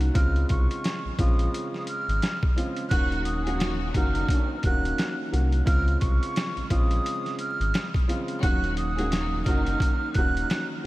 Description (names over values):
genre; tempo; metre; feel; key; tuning
hip hop, boom-bap hip-hop; 87 BPM; 4/4; swing 58% on 16ths; Eb dorian; A4 = 438 Hz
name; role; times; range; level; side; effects
warm upright piano; accompaniment; 0.0-10.9 s; Db3 to Gb4; -31 LUFS; right 1 dB; cassette tape, high-pass filter, low-pass filter
sub bass with octave; bass; 0.0-10.4 s; Eb1 to Db2; -26 LUFS; equal; none
boom bap sampler-style drum kit; drums; 0.0-10.7 s; hi-hat, kick drum, snare drum; -26 LUFS; equal; none
breathy jazz flute; melody; 0.2-10.7 s; Db6 to Gb6; -31 LUFS; right 2 dB; high-pass filter, low-pass filter, diffuse ambient delay
warm studio string section; stabs; 2.9-10.1 s; Eb3 to Ab4; -35 LUFS; left 2 dB; high-pass filter, low-pass filter, diffuse ambient delay
room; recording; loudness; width
light reverb, small room ambience; vinyl crackle; -23 LUFS; side -18 dB against mid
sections
0.0-10.9 A section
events
none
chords
0.2 Dbmaj7; 2.9 Ebm7; 5.7 Dbmaj7; 8.4 Ebm7